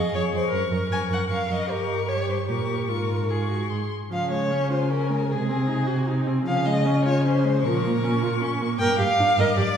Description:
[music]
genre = quick classical-period movement for string quartet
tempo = 154 BPM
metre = 3/4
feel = straight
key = Db major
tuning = A4 = 444 Hz
[part]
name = warm violin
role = melody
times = 0.0-9.8 s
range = Ab5 to D6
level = -33 LUFS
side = left 6 dB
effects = none
[part]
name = dark violin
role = second line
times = 0.0-9.8 s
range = Ab4 to Ab5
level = -26 LUFS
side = left 1 dB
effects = none
[part]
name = rich viola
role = accompaniment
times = 0.0-9.7 s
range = F3 to Bb4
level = -28 LUFS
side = right 1 dB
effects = none
[part]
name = dark cello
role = bass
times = 0.1-9.6 s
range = F2 to Db3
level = -25 LUFS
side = right 1 dB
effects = none
[sound]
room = wet scoring stage reverb, RT60 1.6 s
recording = heard from further back in the room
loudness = -21 LUFS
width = side -8 dB against mid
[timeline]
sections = 0.0-4.1 A section; 4.1-9.8 B section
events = none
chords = 0.0 Db/F; 0.5 Gb; 1.7 Gdim; 2.9 Db/Ab; 3.7 Ab; 4.1 Db; 5.3 Ab7/C; 6.5 Db; 7.6 Bbm; 8.8 Gm

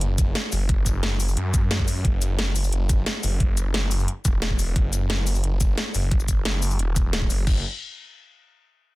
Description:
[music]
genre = dark technical drum and bass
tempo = 177 BPM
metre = 4/4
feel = straight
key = unclear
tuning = A4 = 441 Hz
[part]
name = snarling distorted saw bass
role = bass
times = 0.0-7.6 s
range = E1 to F#2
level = -23 LUFS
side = equal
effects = distortion, overdrive
[part]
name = drum and bass drum kit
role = drums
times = 0.0-7.5 s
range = crash cymbal, hi-hat, shaker, snare drum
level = -27 LUFS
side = left 1 dB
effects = none
[part]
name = electronic kick drum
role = drums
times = 0.2-7.5 s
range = none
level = -22 LUFS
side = equal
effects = none
[sound]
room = little or no reverb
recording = dense, heavily limited modern master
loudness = -20 LUFS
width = side -20 dB against mid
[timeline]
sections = 0.0-7.5 A section; 7.5-8.8 B section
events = none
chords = none

